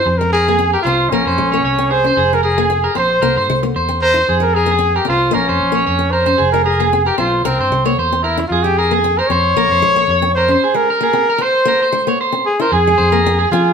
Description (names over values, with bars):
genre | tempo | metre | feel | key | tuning
highlife guitar band | 114 BPM | 4/4 | swing 54% on 16ths | F harmonic minor | A4 = 440 Hz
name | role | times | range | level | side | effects
warm trumpet | melody | 0.0-13.7 s | C4 to Db5 | -15 LUFS | left 1 dB | none
fingerpicked old ladder-braced acoustic guitar | accompaniment | 0.0-13.7 s | Ab3 to E4 | -23 LUFS | left 6 dB | none
electric guitar at the edge of break-up | arpeggios | 0.0-13.7 s | Ab4 to Db5 | -17 LUFS | right 4 dB | none
fingered electric bass | bass | 0.1-13.7 s | F1 to F3 | -20 LUFS | equal | none
room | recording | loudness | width
moderate stone room reverb, RT60 0.9 s | band playing live in one room | -12 LUFS | side -6 dB against mid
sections
0.0-12.7 A section; 12.7-13.7 B section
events
none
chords
0.1 Fm; 1.1 Bbm7; 2.2 Fm; 3.2 C; 4.3 Fm; 5.3 Bbm; 6.4 Fm; 7.5 C; 8.5 Fm; 9.6 Bbm7; 10.6 Abadd9; 11.7 N.C.; 12.7 Fm